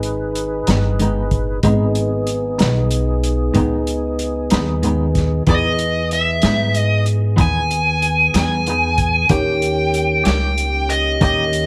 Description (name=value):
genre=slow blues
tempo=63 BPM (dotted quarters)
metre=12/8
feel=straight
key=G# harmonic minor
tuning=A4 = 441 Hz
part: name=bell-like tine electric piano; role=accompaniment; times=0.0-11.7 s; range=D#4 to D#6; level=-29 LUFS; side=equal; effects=none
part: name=mellow tonewheel organ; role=sustained chords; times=0.0-11.7 s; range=A#3 to B4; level=-27 LUFS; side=equal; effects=slow rotary speaker, chorus vibrato
part: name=upright bass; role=bass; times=0.0-11.7 s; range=G1 to G#2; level=-22 LUFS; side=equal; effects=none
part: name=vintage drum kit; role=drums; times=0.0-11.7 s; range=hi-hat, kick drum, snare drum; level=-23 LUFS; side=equal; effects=none
part: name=clean electric guitar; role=accompaniment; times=0.7-11.4 s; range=G#2 to G#4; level=-24 LUFS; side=equal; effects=tremolo
part: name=smooth overdriven lead guitar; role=melody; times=5.5-11.7 s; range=D#5 to G#5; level=-20 LUFS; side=equal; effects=none
room=light reverb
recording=none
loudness=-17 LUFS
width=mono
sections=0.0-11.7 A section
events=none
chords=0.0 G#m; 5.5 Emaj7; 9.3 D#7